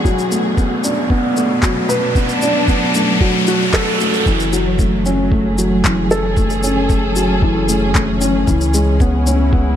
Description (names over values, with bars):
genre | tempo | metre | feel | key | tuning
piano and strings electronica | 114 BPM | 4/4 | straight | F# minor | A4 = 438 Hz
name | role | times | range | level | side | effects
dark studio string section | sustained chords | 0.0-9.8 s | B2 to A4 | -21 LUFS | right 2 dB | none
felt-muted upright piano | riff | 0.0-9.8 s | E3 to B4 | -17 LUFS | left 1 dB | tape echo
electronic kick drum | drums | 0.0-9.6 s | none | -16 LUFS | equal | none
riser | sound effects | 0.0-4.3 s | none | -22 LUFS | equal | none
electronic shaker and handclaps | drums | 0.1-9.4 s | none | -24 LUFS | left 2 dB | overdrive
warm sub bass | bass | 4.3-9.8 s | F#1 to C#2 | -19 LUFS | equal | sidechain pumping
room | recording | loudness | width
light reverb | none | -13 LUFS | side -10 dB against mid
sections
0.0-4.3 A section; 4.3-9.8 B section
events
build-up 0.0-4.3; riser 0.0-4.3; drop 4.3-9.8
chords
0.1 Bm7; 4.3 F#m7; 8.5 C#m7